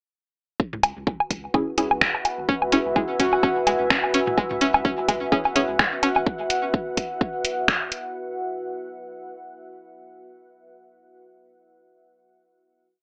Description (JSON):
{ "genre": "minimal techno", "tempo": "127 BPM", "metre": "4/4", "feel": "swing 56% on 16ths", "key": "C# minor", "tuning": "A4 = 438 Hz", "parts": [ { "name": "electronic kick drum", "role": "drums", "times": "0.6-7.8 s", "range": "none", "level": "-27 LUFS", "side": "equal", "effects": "none" }, { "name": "deep dark ambient pad", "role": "texture", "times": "1.7-8.2 s", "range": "F#4 to G#5", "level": "-30 LUFS", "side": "equal", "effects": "chorus, built-in reverb, sidechain pumping" }, { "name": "round analog bass", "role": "bass", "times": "0.7-6.2 s", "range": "G#1 to C#2", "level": "-43 LUFS", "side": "equal", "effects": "sidechain pumping" }, { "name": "electronic toms and woodblock", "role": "percussion", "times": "0.7-6.2 s", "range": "none", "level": "-25 LUFS", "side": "equal", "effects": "digital delay" }, { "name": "booming analog drum machine", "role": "drums", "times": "0.8-8.0 s", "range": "finger snaps, hi-hat", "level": "-25 LUFS", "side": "equal", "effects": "none" }, { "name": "filtered dub chord stab", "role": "stabs", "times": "1.5-5.7 s", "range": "C#4 to G#4", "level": "-28 LUFS", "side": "equal", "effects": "phaser, digital delay" }, { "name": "string-like resonator pluck", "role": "riff", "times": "2.5-6.1 s", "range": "G#3 to C#4", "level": "-27 LUFS", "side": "equal", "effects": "chorus, vintage 12-bit sampler grit, sidechain pumping, digital delay" }, { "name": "breathy flute-like synth lead", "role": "melody", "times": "3.2-3.6 s", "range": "F#4", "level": "-27 LUFS", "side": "equal", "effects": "lush chorus, digital delay" } ], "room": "wet small room reverb, RT60 0.6 s", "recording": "AM radio sound", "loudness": "-23 LUFS", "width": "mono", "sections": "0.6-8.2 groove", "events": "none", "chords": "0.6 C#m", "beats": "| 0.60 1.07 1.54 2.02 | 2.49 2.96 3.43 3.90 | 4.38 4.85 5.32 5.79 | 6.27 6.74 7.21 7.68" }